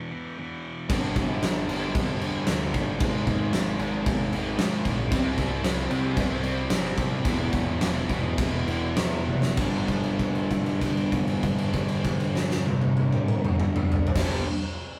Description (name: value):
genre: quiet-loud alternative rock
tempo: 97-114 BPM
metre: 4/4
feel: straight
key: unclear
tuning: A4 = 440 Hz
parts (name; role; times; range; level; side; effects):
- thick fuzz guitar; riff; 0.0-14.5 s; E2 to C4; -35 LUFS; equal; none
- crunchy overdriven guitar; riff; 0.9-14.5 s; E2 to C4; -33 LUFS; equal; spring reverb
- thick fuzz guitar; riff; 0.9-14.5 s; G2 to E4; -37 LUFS; equal; none
- growling picked electric bass; bass; 0.9-14.4 s; E1 to C3; -36 LUFS; equal; overdrive
- big rock drum kit; drums; 0.9-14.3 s; crash cymbal, kick drum, snare drum, toms; -28 LUFS; equal; none
room: moderate small room reverb, RT60 0.5 s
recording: rough rehearsal-room recording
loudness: -26 LUFS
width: mono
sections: 0.0-9.6 A section; 9.6-14.5 B section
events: slowing down 5.1-9.6; drum fill 9.3-9.6; held note 9.6-14.2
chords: 0.0 E5; 0.9 Gm; 3.0 Ab; 5.1 C; 7.3 Em; 9.6 Gm